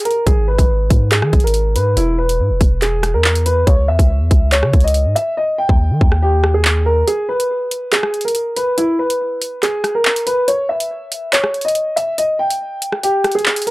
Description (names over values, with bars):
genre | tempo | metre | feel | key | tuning
hip hop, drill | 141 BPM | 4/4 | half-time | unclear | A4 = 440 Hz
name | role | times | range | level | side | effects
dark grand piano | melody | 0.0-13.7 s | E4 to G5 | -17 LUFS | equal | none
drill drum kit | drums | 0.0-13.7 s | handclaps, hi-hat, kick drum, rim click | -16 LUFS | equal | none
long sustained 808-style bass | bass | 0.3-7.0 s | E1 to D#3 | -16 LUFS | equal | none
room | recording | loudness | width
little or no reverb | dry, gritty hardware recording, transformer saturation | -13 LUFS | side -20 dB against mid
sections
0.0-13.7 A section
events
break 0.0, 7.1-13.7; hi-hats muted 5.4-7.1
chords
0.3 G#m; 2.0 E5; 3.7 C#m; 5.4 D#; 7.1 N.C.